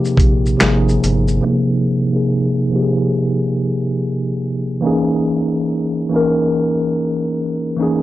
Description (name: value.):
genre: lo-fi hip hop.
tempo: 71 BPM.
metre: 4/4.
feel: swing 62% on 16ths.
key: Ab major.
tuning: A4 = 440 Hz.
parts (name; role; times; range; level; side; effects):
mellow tine electric piano; accompaniment; 0.0-8.0 s; C3 to Bb4; -15 LUFS; equal; medium stereo tremolo, low-pass filter.
dusty soul sampler-style drum kit; drums; 0.1-1.4 s; finger snaps, hi-hat, kick drum, shaker, snare drum; -15 LUFS; equal; none.
deep dub fingered electric bass; bass; 0.2-1.4 s; G1 to Bb1; -18 LUFS; equal; none.
room: wet small room reverb, RT60 0.5 s.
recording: none.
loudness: -15 LUFS.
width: side -14 dB against mid.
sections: 0.0-1.5 A section; 1.5-8.0 B section.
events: filter sweep on tine electric piano 1.5-8.0.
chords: 0.0 Bbsus2; 0.6 Abmaj9; 4.8 Dbm6.